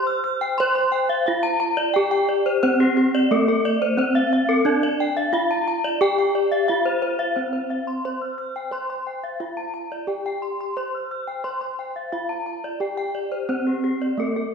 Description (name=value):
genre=gamelan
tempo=88 BPM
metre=4/4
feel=straight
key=C slendro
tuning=A4 = 438 Hz
part: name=gamelan-type bronze metallophone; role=melody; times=0.0-14.5 s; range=Bb3-45c to C5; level=-23 LUFS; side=right 1 dB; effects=none
part: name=gamelan-type bronze metallophone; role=arpeggios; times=0.1-14.4 s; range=G4+25c to F6-35c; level=-23 LUFS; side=left 2 dB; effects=none
room=wet recital hall reverb, RT60 1.6 s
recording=recorded in a church or concert hall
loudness=-20 LUFS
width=side -6 dB against mid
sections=0.0-14.5 A section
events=none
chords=none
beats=0.59 1.27 | 1.95 2.63 3.31 3.98 | 4.66 5.34 6.02 6.70 | 7.38 8.05 8.73 9.41 | 10.09 10.77 11.44 12.12 | 12.80 13.48 14.18